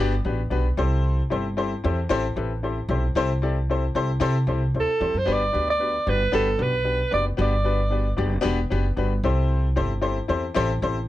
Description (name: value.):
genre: uptempo 1960s-style soul.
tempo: 114 BPM.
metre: 4/4.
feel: straight.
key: unclear.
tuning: A4 = 444 Hz.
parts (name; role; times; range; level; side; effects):
warm grand piano; accompaniment; 0.0-11.0 s; B3 to D5; -26 LUFS; left 4 dB; none.
upright bass; bass; 0.0-11.1 s; E1 to C3; -24 LUFS; equal; none.
warm alto saxophone; melody; 4.8-8.2 s; A4 to D5; -23 LUFS; right 2 dB; none.
room: light reverb.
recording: dark, warm production.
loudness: -21 LUFS.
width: side -14 dB against mid.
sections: 0.0-11.1 A section.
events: none.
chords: 0.0 Gmaj7; 0.8 C6; 5.3 Gmaj7; 9.2 C6.